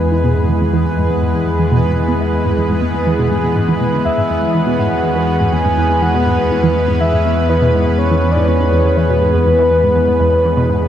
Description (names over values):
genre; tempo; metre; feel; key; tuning
ambient, sequencer-driven space music; 122 BPM; 4/4; straight; unclear; A4 = 440 Hz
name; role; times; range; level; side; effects
lush unison pad; sustained chords; 0.0-10.9 s; E3 to B4; -16 LUFS; equal; chorus
tight sequenced synth; riff; 0.0-10.9 s; E2 to E3; -19 LUFS; right 1 dB; chorus, tape echo
warm sub bass; bass; 0.0-10.9 s; E2; -19 LUFS; equal; none
bubbling stepped-filter texture; texture; 0.0-10.9 s; B3 to B4; -28 LUFS; right 1 dB; chorus, built-in reverb
soft octave-layered synth lead; melody; 4.1-10.9 s; B4 to G#5; -17 LUFS; left 1 dB; chorus, tape echo
room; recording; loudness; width
wet plate reverb, RT60 2.7 s; dreamy mix soaked in reverb; -12 LUFS; side -10 dB against mid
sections
0.0-10.9 A section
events
filter sweep on synth arpeggio sound 0.0-10.9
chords
0.0 E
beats
| 0.12 0.61 1.10 1.59 | 2.09 2.58 3.07 3.56 | 4.05 4.54 5.04 5.53 | 6.02 6.51 7.00 7.50 | 7.99 8.48 8.97 9.46 | 9.96 10.45